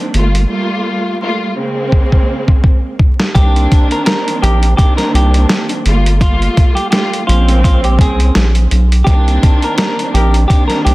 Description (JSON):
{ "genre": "hip hop, boom-bap hip-hop", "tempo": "84 BPM", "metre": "4/4", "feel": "swing 56% on 16ths", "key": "unclear", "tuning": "A4 = 440 Hz", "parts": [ { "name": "warm studio string section", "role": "accompaniment", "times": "0.0-10.9 s", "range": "Db3 to F4", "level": "-18 LUFS", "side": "right 1 dB", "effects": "cassette tape, high-pass filter, low-pass filter" }, { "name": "round analog bass", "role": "bass", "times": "0.1-10.9 s", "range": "G1 to C2", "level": "-11 LUFS", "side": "equal", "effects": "none" }, { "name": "dusty soul sampler-style drum kit", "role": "drums", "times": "0.1-10.9 s", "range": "hi-hat, kick drum, snare drum", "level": "-12 LUFS", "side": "equal", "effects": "none" }, { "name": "semi-hollow electric guitar", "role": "melody", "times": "3.3-10.9 s", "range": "F4 to Bb4", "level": "-19 LUFS", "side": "equal", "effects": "high-pass filter, low-pass filter, tape echo" }, { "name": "mellow horn section", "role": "stabs", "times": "4.4-4.6, 10.1-10.4 s", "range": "Eb4 to Bb4", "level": "-27 LUFS", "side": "left 3 dB", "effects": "high-pass filter, low-pass filter, tape echo" } ], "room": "digital ambience", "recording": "dense, heavily limited modern master, vinyl crackle", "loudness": "-10 LUFS", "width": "side -20 dB against mid", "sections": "0.0-3.4 A section; 3.4-10.9 B section", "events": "drum fill 1.9-3.4", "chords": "0.1 Gm9; 1.6 Bbm9; 3.4 Cm9; 5.9 Gm9; 7.3 Bbm9; 9.1 Cm9" }